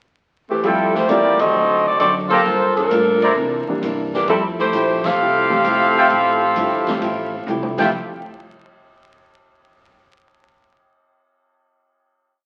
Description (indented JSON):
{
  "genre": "jazz, big band swing",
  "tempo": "132 BPM",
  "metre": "4/4",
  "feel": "swing 68% on 8ths",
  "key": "F major",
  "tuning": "A4 = 440 Hz",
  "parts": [
    { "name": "warm saxophone section", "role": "melody", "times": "0.5-7.5 s", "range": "E3 to F5", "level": "-18 LUFS", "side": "equal", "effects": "none" },
    { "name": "hollow-body jazz guitar", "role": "accompaniment", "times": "0.6-7.9 s", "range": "C3 to A4", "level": "-28 LUFS", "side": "equal", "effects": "none" },
    { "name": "warm trumpet section", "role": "stabs", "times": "0.6-7.9 s", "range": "E4 to Bb5", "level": "-23 LUFS", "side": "equal", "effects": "none" },
    { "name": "upright bass", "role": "bass", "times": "0.6-7.9 s", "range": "F1 to C3", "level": "-33 LUFS", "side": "equal", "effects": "none" },
    { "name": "swinging big-band drum kit", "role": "drums", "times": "0.6-7.9 s", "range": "crash cymbal, hi-hat, kick drum, ride cymbal, snare drum, toms", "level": "-35 LUFS", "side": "equal", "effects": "none" },
    { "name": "clear grand piano", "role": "accompaniment", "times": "1.1-7.9 s", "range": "E3 to E4", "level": "-29 LUFS", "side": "equal", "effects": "none" }
  ],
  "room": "wet large studio reverb, RT60 1.2 s",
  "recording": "very old 78 rpm record, vinyl crackle",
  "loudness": "-18 LUFS",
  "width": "mono",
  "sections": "0.0-0.6 pickup bar; 0.6-7.9 A section; 7.9-9.8 final hit",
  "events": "band accent 1.3, 5.0; drum fill 7.5-7.9",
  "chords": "0.0 Emadd11; 0.6 Fmaj9; 1.5 D7b9; 2.5 Gm9; 3.4 C9; 4.3 Fmaj9; 7.9 N.C."
}